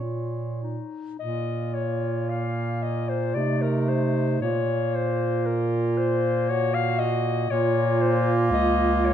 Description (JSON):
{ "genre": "classical, lyrical piece for single-reed quartet", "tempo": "50-60 BPM", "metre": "3/4", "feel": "rubato", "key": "Bb minor", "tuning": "A4 = 440 Hz", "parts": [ { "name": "warm clarinet", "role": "melody", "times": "0.0-9.1 s", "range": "Eb4 to F5", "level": "-27 LUFS", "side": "left 7 dB", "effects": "none" }, { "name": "clear alto saxophone", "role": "second line", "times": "0.0-9.1 s", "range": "Eb4 to Db5", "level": "-29 LUFS", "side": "right 5 dB", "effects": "none" }, { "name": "warm clarinet", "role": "accompaniment", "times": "0.0-9.1 s", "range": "A3 to Bb3", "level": "-31 LUFS", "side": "left 2 dB", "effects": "none" }, { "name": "clear bass clarinet", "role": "bass", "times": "0.0-9.1 s", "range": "Db2 to C3", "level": "-26 LUFS", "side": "right 2 dB", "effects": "none" } ], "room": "moderate recital hall reverb, RT60 1.5 s", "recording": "dark, warm production", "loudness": "-22 LUFS", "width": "side -9 dB against mid", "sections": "0.0-1.2 A section; 1.2-9.1 A section", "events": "none", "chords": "0.0 Bbm; 3.4 Adim/C; 4.4 Bb5; 7.5 Bbm", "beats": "0.04 | 1.21 2.30 3.36 | 4.42 5.47 6.50 | 7.51 8.53" }